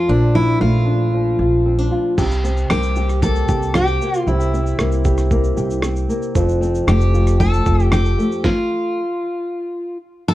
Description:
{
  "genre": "acoustic pop",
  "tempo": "115 BPM",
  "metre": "4/4",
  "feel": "straight",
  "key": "unclear",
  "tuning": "A4 = 438 Hz",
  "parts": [
    { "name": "picked steel-string acoustic guitar", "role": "melody", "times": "0.0-10.3 s", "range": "D4 to A4", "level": "-21 LUFS", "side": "equal", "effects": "tape echo" },
    { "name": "nylon-string guitar", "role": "accompaniment", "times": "0.0-9.0 s", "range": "F2 to G4", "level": "-20 LUFS", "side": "equal", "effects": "none" },
    { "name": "upright bass", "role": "bass", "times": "0.1-8.1 s", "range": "F1 to C2", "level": "-18 LUFS", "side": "equal", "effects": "none" },
    { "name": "dusty soul sampler-style drum kit", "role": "drums", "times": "2.2-8.6 s", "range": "crash cymbal, kick drum, rim click, shaker, snare drum", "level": "-23 LUFS", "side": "right 1 dB", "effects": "overdrive" }
  ],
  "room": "light reverb",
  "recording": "worn, warbling old tape, cassette tape, warbly pitch drift",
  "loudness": "-15 LUFS",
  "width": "side -15 dB against mid",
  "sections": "0.0-2.2 A section; 2.2-10.3 B section",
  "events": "stop 8.4-10.3",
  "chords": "0.1 Bbmaj7; 2.2 C7; 6.4 F; 8.4 N.C.",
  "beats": "| 0.08 0.61 1.13 1.65 | 2.18 2.70 3.22 3.74 | 4.27 4.79 5.31 5.83 | 6.36 6.88 7.40 7.92 | 8.44 8.96 9.48 10.00"
}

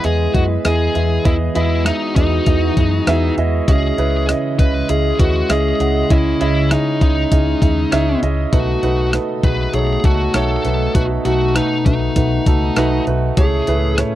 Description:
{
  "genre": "1980s-style pop",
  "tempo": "99 BPM",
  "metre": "4/4",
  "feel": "swing 55% on 16ths",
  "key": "E major",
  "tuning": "A4 = 441 Hz",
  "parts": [
    { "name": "high-gain lead guitar", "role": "melody", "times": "0.0-13.9 s", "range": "D#4 to B4", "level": "-21 LUFS", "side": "left 3 dB", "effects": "distortion, tape echo" },
    { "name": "warm concert grand piano", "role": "accompaniment", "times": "0.0-14.2 s", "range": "B2 to F#5", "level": "-20 LUFS", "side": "right 5 dB", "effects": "none" },
    { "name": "glassy FM pad", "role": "sustained chords", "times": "0.0-14.2 s", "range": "A2 to D#5", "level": "-25 LUFS", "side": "left 2 dB", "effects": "ensemble chorus, built-in reverb" },
    { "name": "vintage muted fingered electric bass", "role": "bass", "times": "0.0-14.0 s", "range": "B1 to F#2", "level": "-19 LUFS", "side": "equal", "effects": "none" },
    { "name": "clean 12-bit digital drum machine", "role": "drums", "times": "0.0-14.1 s", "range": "hi-hat, kick drum, rim click", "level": "-16 LUFS", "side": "equal", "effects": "none" }
  ],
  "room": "little or no reverb",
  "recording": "dry, close 1970s-style studio recording",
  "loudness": "-14 LUFS",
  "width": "side -14 dB against mid",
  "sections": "0.0-14.2 A section",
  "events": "none",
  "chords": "0.0 Emaj7; 3.7 C#madd9; 8.5 B7; 13.4 Amaj7/C#",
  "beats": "0.04 0.65 | 1.25 1.86 2.47 3.07 | 3.68 4.28 4.89 5.50 | 6.10 6.71 7.31 7.92 | 8.53 9.13 9.74 10.35 | 10.95 11.56 12.16 12.77 | 13.38 13.98"
}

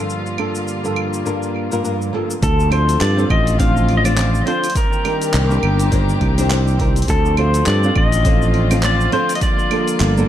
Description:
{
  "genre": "sunset chillout",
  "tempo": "103 BPM",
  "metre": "4/4",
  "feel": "swing 57% on 16ths",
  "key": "unclear",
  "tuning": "A4 = 442 Hz",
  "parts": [
    { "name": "flamenco guitar", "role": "accompaniment", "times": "0.0-10.3 s", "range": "G2 to C5", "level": "-22 LUFS", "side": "equal", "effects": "auto-pan, vintage 12-bit sampler grit, tape echo" },
    { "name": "warm studio string section", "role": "sustained chords", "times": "0.0-10.3 s", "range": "D3 to G4", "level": "-24 LUFS", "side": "equal", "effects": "none" },
    { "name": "deep house drum kit", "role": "drums", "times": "0.1-10.3 s", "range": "claves, handclaps, hi-hat, shaker", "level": "-27 LUFS", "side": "right 2 dB", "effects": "studio reverb, analog delay" },
    { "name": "pedal steel guitar", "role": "melody", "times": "2.4-10.3 s", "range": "A4 to F5", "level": "-21 LUFS", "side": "left 1 dB", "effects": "tape echo" },
    { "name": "sustaining fretless electric bass", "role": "bass", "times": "2.4-10.2 s", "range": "G1 to G2", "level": "-16 LUFS", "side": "equal", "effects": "none" },
    { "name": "electronic kick drum", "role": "drums", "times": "2.4-9.5 s", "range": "none", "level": "-19 LUFS", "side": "equal", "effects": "studio reverb" }
  ],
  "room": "light reverb",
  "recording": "echo-heavy mix",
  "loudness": "-14 LUFS",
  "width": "side -11 dB against mid",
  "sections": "0.0-2.4 A section; 2.4-10.3 B section",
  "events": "none",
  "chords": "0.1 Gm7; 2.4 Dm7; 4.8 Cm7; 7.1 Dm7; 9.4 Gm7",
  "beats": "| 0.10 0.68 1.26 1.84 | 2.43 3.01 3.59 4.17 | 4.76 5.34 5.92 6.50 | 7.09 7.67 8.25 8.83 | 9.42 10.00"
}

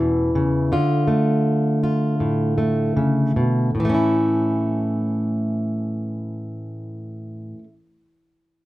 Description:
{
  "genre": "folk",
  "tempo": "76-83 BPM",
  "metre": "4/4",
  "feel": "straight",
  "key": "A major",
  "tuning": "A4 = 440 Hz",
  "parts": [
    { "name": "fingerpicked plugged-in steel-string acoustic guitar", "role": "accompaniment", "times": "0.0-7.7 s", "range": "E2 to F4", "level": "-19 LUFS", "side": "equal", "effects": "none" }
  ],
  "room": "moderate large studio reverb, RT60 0.8 s",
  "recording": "none",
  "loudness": "-18 LUFS",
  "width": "side -16 dB against mid",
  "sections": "0.0-3.7 A section; 3.7-6.9 B section",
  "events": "slowing down 0.0-3.7",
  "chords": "0.0 A; 0.7 Dm; 3.7 A",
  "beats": "| 0.71 1.45 2.20 2.96 | 3.75 4.54 5.33 6.12"
}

